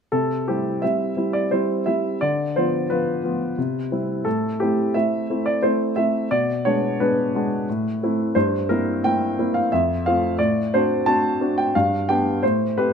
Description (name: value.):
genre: classical-period piano sonatina.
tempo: 88 BPM.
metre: 3/4.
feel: straight.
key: C major.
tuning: A4 = 441 Hz.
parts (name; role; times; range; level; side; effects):
warm baby grand piano; solo; 0.1-12.9 s; F2 to A5; -19 LUFS; equal; none.
room: moderate recital hall reverb, RT60 1.4 s.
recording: close, detailed microphones.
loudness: -19 LUFS.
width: side -6 dB against mid.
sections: 0.1-12.9 A section.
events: none.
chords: 0.1 C; 2.2 Bdim/D; 3.6 C; 4.3 Am; 6.3 G#dim/B; 7.7 Am; 8.3 C7/G; 9.7 F; 10.4 D7/A; 11.7 G; 12.4 Am7.